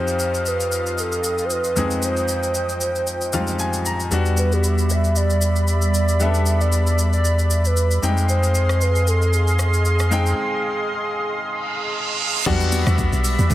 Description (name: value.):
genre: amapiano.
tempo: 115 BPM.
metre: 4/4.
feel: swing 55% on 16ths.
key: unclear.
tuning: A4 = 443 Hz.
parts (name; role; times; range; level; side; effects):
hollow clarinet-like synth lead; melody; 0.0-11.9 s; G4 to E5; -25 LUFS; right 1 dB; chorus, digital delay.
clear concert grand piano; accompaniment; 0.0-13.5 s; F2 to A#5; -26 LUFS; left 2 dB; none.
lush unison pad; sustained chords; 0.0-13.5 s; G3 to C6; -26 LUFS; right 1 dB; chorus, sidechain pumping.
deep house drum kit; drums; 0.1-13.5 s; crash cymbal, hi-hat, kick drum, rim click, shaker; -27 LUFS; left 1 dB; none.
round analog bass; bass; 4.1-10.3 s; E2 to F2; -18 LUFS; equal; none.
reverse cymbal; sound effects; 11.6-12.5 s; none; -24 LUFS; right 6 dB; none.
deep log drum bass; bass; 12.5-13.5 s; B1 to E2; -19 LUFS; equal; none.
congas; percussion; 12.5-13.5 s; none; -27 LUFS; right 4 dB; none.
room: light reverb.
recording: none.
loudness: -18 LUFS.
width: side -14 dB against mid.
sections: 0.0-12.5 A section; 12.5-13.5 B section.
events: grand piano fill 3.1-4.1; kick muted 4.1-5.2; break 10.4-12.5; reverse cymbal 11.6-12.5; drop 12.5-13.5.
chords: 0.0 Fm7; 4.1 Em7; 8.0 Fm7; 12.5 Em7.